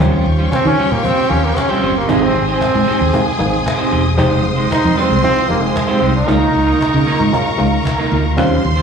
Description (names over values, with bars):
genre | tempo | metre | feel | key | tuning
disco | 115 BPM | 4/4 | straight | unclear | A4 = 440 Hz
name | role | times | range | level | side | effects
rich studio violin section | second line | 0.0-8.8 s | G4 to C6 | -23 LUFS | left 1 dB | slapback echo
clean electric guitar | accompaniment | 0.0-8.8 s | G3 to C5 | -20 LUFS | right 9 dB | spring reverb, slapback echo
muted clav | accompaniment | 0.0-8.8 s | F3 to Ab4 | -21 LUFS | left 3 dB | tube saturation, slapback echo
warm studio string section | sustained chords | 0.0-8.8 s | Ab3 to Eb6 | -25 LUFS | left 3 dB | none
fingered electric bass | bass | 0.0-8.8 s | Fb1 to Eb3 | -17 LUFS | equal | none
cajon | drums | 0.0-8.8 s | none | -23 LUFS | equal | slapback echo
brilliant trombone | melody | 0.5-7.4 s | Ab3 to Eb4 | -16 LUFS | right 1 dB | slapback echo
room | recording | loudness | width
light reverb | live gig heard through the venue's PA, club reverb | -12 LUFS | side -6 dB against mid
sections
0.0-8.8 A section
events
trombone solo 0.0-8.8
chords
0.0 Eb13; 2.1 Abmaj7; 4.2 Fm9; 6.3 Db69